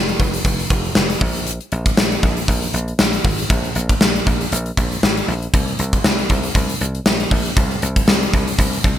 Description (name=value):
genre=1980s-style pop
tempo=118 BPM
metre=4/4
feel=swing 55% on 16ths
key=unclear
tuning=A4 = 441 Hz
part: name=dry thumbed slap bass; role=bass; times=0.0-9.0 s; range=F1 to C2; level=-22 LUFS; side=equal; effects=none
part: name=gated 80s drum kit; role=drums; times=0.1-9.0 s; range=hi-hat, kick drum, snare drum, tambourine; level=-16 LUFS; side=equal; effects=gated reverb
room=light reverb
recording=bright 1980s-style digital production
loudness=-15 LUFS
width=side -11 dB against mid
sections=0.0-9.0 A section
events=none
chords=none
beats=0.45 0.96 | 1.47 1.98 2.48 2.99 | 3.50 4.01 4.52 5.03 | 5.54 6.04 6.55 7.06 | 7.57 8.08 8.59